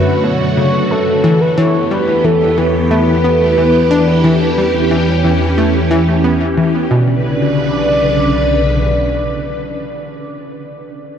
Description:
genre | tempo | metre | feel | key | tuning
ambient, sequencer-driven space music | 90 BPM | 4/4 | straight | B minor | A4 = 439 Hz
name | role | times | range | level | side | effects
mellow horn-like synth lead | melody | 0.0-10.3 s | A4 to D5 | -17 LUFS | equal | chorus, tape echo
phased string machine | sustained chords | 0.0-10.3 s | C#3 to B4 | -16 LUFS | equal | ensemble chorus, phaser
analog pluck | riff | 0.0-7.2 s | F#2 to D4 | -17 LUFS | left 1 dB | chorus, tape echo
analog drone | bass | 0.1-8.9 s | B1 to F#2 | -20 LUFS | equal | chorus, phaser
room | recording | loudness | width
wet huge ambient reverb, RT60 8.6 s | worn, warbling old tape, cassette tape, warbly pitch drift | -11 LUFS | side -8 dB against mid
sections
0.0-6.9 A section; 6.9-9.6 B section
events
none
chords
0.0 F#m; 1.6 Em; 6.9 Bmadd9

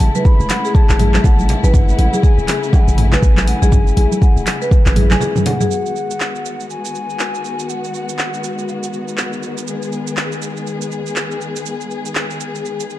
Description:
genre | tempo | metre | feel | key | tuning
afro house | 121 BPM | 4/4 | swing 60% on 16ths | G# phrygian | A4 = 438 Hz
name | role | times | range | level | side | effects
breathy mellow bansuri | melody | 0.0-9.4 s | F#5 to B5 | -27 LUFS | left 1 dB | ping-pong delay
warm symphonic string section | sustained chords | 0.0-13.0 s | C#3 to G#4 | -24 LUFS | left 3 dB | sidechain pumping, low-pass filter
warm 808-style bass | bass | 0.0-5.2 s | E1 to A1 | -15 LUFS | equal | sidechain pumping
deep house drum kit | drums | 0.0-13.0 s | handclaps, hi-hat, shaker, toms | -22 LUFS | right 1 dB | none
congas | percussion | 0.0-5.7 s | none | -22 LUFS | right 2 dB | none
marimba with medium hard mallets | arpeggios | 0.2-5.7 s | G#4 to G#5 | -22 LUFS | left 3 dB | sidechain pumping, ping-pong delay
electronic kick drum | drums | 0.3-4.8 s | none | -12 LUFS | equal | none
room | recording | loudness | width
light reverb, studio reverb | dark, warm production | -14 LUFS | side -15 dB against mid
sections
0.0-5.7 A section; 5.7-13.0 B section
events
break 5.2-5.7; drum fill 5.3-5.7; filter sweep on string section 5.7-13.0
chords
0.0 Amaj7; 5.7 G#m7

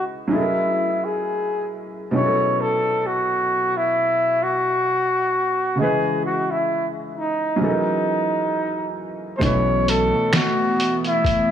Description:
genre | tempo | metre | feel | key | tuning
lo-fi hip hop | 66 BPM | 4/4 | swing 56% on 16ths | unclear | A4 = 444 Hz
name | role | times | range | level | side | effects
breathy flugelhorn | melody | 0.0-11.5 s | D#4 to C#5 | -20 LUFS | equal | none
felt-muted upright piano | accompaniment | 0.0-11.5 s | B2 to D#5 | -25 LUFS | right 1 dB | cassette tape
hollow soft pad | sustained chords | 9.4-11.5 s | E3 to B3 | -25 LUFS | left 1 dB | chorus
upright bass | bass | 9.4-10.1 s | B1 | -23 LUFS | left 2 dB | none
lo-fi sampler-style drum kit | drums | 9.4-11.5 s | finger snaps, hi-hat, kick drum, snare drum | -22 LUFS | right 1 dB | none
room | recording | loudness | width
light reverb, small room reverb | studio reverb | -18 LUFS | side -9 dB against mid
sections
0.0-9.4 A section; 9.4-11.5 B section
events
none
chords
0.3 F#13; 2.1 B9sus4; 5.8 C#m7; 7.6 F#13; 9.4 B9sus4

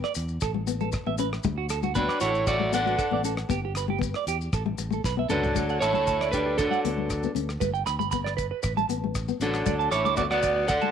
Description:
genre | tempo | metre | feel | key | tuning
highlife guitar band | 117 BPM | 4/4 | straight | D major | A4 = 439 Hz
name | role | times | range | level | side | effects
nylon-string guitar | accompaniment | 0.0-10.9 s | A3 to C#4 | -31 LUFS | left 12 dB | none
clean electric guitar | arpeggios | 0.0-10.9 s | F#4 to D6 | -30 LUFS | right 11 dB | wide subtle chorus, slapback echo
damped 70s drum kit | drums | 0.0-10.8 s | hi-hat, kick drum, rim click, snare drum, toms | -32 LUFS | equal | none
maracas | percussion | 0.1-10.9 s | none | -40 LUFS | left 12 dB | none
fingered electric bass | bass | 0.2-10.8 s | G1 to E2 | -32 LUFS | equal | none
electric guitar at the edge of break-up | melody | 2.0-10.9 s | D4 to F#5 | -26 LUFS | right 2 dB | none
raspy tenor saxophone | second line | 2.0-10.9 s | F#3 to D4 | -33 LUFS | left 12 dB | none
room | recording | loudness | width
light reverb, studio ambience | 1960s-style stereo with parts hard left and right | -24 LUFS | side -8 dB against mid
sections
0.0-5.6 A section; 5.6-10.9 B section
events
drum fill 5.0-5.6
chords
0.4 Asus2; 1.4 D; 3.5 G; 4.5 Asus2; 5.6 D; 7.6 G; 8.6 Asus2; 9.7 D

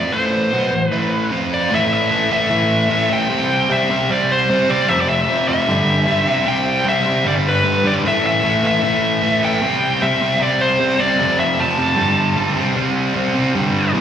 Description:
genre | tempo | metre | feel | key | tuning
rock | 152 BPM | 4/4 | straight | A minor | A4 = 441 Hz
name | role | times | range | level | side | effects
dark smooth lead guitar | melody | 0.0-13.9 s | B4 to A5 | -18 LUFS | left 1 dB | overdrive, slapback echo, analog delay
overdriven electric guitar | riff | 0.0-14.0 s | E2 to F4 | -17 LUFS | equal | spring reverb, slapback echo
room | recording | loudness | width
light reverb, digital ambience | live gig heard through the venue's PA, recital hall reverb | -14 LUFS | side -9 dB against mid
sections
0.0-1.7 A section; 1.7-14.0 B section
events
none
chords
0.0 Am; 1.3 F5; 1.7 A5; 3.3 C; 4.9 F5; 5.7 G5; 6.3 C; 7.3 G; 8.0 A5; 9.6 C; 11.2 F; 12.0 G5; 12.6 C5; 13.6 G5

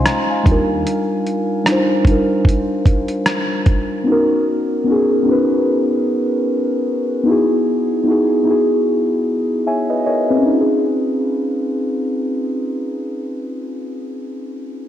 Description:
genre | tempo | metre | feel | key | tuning
lo-fi hip hop | 75 BPM | 4/4 | swing 56% on 16ths | unclear | A4 = 440 Hz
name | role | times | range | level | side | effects
muted felt-like synth keys | accompaniment | 0.0-14.9 s | G3 to C6 | -16 LUFS | equal | chorus, cassette tape
upright bass | bass | 0.0-0.8 s | Eb2 | -22 LUFS | equal | none
dusty soul sampler-style drum kit | drums | 0.1-3.9 s | hi-hat, kick drum, rim click | -16 LUFS | equal | overdrive
room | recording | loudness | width
wet lush hall reverb, RT60 2.5 s | dreamy mix soaked in reverb, cassette tape | -15 LUFS | side -11 dB against mid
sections
0.0-10.5 A section; 10.5-13.7 B section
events
synth keys fill 9.3-10.5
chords
0.5 Ebmaj9; 4.1 Cbmaj9; 7.3 Emaj9; 10.5 Dbmaj9

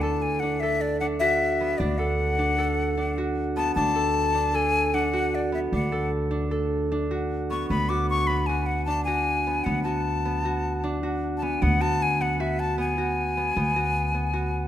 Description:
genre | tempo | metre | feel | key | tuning
contemporary instrumental, chamber music in an uneven meter | 153 BPM | 5/4 | straight | D lydian | A4 = 441 Hz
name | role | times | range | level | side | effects
breathy bright jazz flute | melody | 0.0-14.7 s | D5 to D6 | -26 LUFS | left 3 dB | none
concert harp | arpeggios | 0.0-14.7 s | B3 to A4 | -27 LUFS | right 2 dB | none
upright bass | bass | 0.0-14.7 s | D2 | -28 LUFS | equal | none
room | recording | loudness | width
moderate concert hall reverb, RT60 1.9 s | none | -22 LUFS | side -11 dB against mid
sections
0.0-14.7 A section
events
none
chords
0.0 D; 7.7 Bm/D

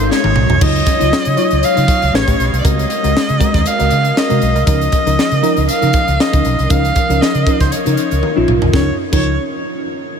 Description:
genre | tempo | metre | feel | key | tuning
polished 1980s jazz-funk pop | 118 BPM | 4/4 | swing 54% on 16ths | Db major | A4 = 440 Hz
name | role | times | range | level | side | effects
rich erhu | melody | 0.0-9.4 s | C5 to F5 | -18 LUFS | right 1 dB | ping-pong delay
bell-like FM electric piano | accompaniment | 0.0-9.4 s | F3 to Db5 | -17 LUFS | left 1 dB | phaser, wide subtle chorus
vintage muted fingered electric bass | bass | 0.0-9.4 s | Ab1 to Db3 | -17 LUFS | equal | none
crisp fusion drum kit | drums | 0.1-9.2 s | crash cymbal, hi-hat, kick drum, snare drum, toms | -17 LUFS | equal | none
room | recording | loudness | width
moderate huge ambient reverb, RT60 7.6 s | dreamy mix soaked in reverb | -11 LUFS | side -7 dB against mid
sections
0.6-8.7 A section; 8.7-10.2 B section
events
drum fill 0.1-0.6, 8.2-8.7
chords
0.0 Ab9; 0.6 Ebm9/Db; 2.1 A9; 2.6 Ab9/Db; 4.7 Db69

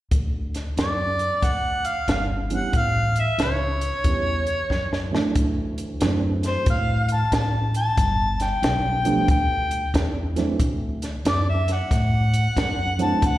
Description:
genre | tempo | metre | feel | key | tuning
electric blues shuffle | 92 BPM | 4/4 | swing 65% on 8ths | unclear | A4 = 440 Hz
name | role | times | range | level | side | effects
upright bass | bass | 0.1-13.4 s | G1 to A2 | -24 LUFS | equal | none
compact cocktail drum kit | drums | 0.1-13.4 s | hi-hat, kick drum, snare drum | -25 LUFS | equal | none
mellow harmonica | melody | 0.8-13.4 s | C5 to A5 | -24 LUFS | left 1 dB | overdrive, plate reverb, slapback echo, analog delay
dark grand piano | accompaniment | 2.5-13.2 s | D2 to D4 | -25 LUFS | right 4 dB | plate reverb, slapback echo
room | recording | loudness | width
light reverb | live gig heard through the venue's PA, recital hall reverb | -20 LUFS | side -15 dB against mid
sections
0.1-5.4 A section; 5.4-13.4 B section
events
drum fill 4.7-5.4; harmonica solo 5.4-13.4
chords
0.1 D; 2.7 A7; 5.4 D9; 8.0 Gadd9; 10.6 D

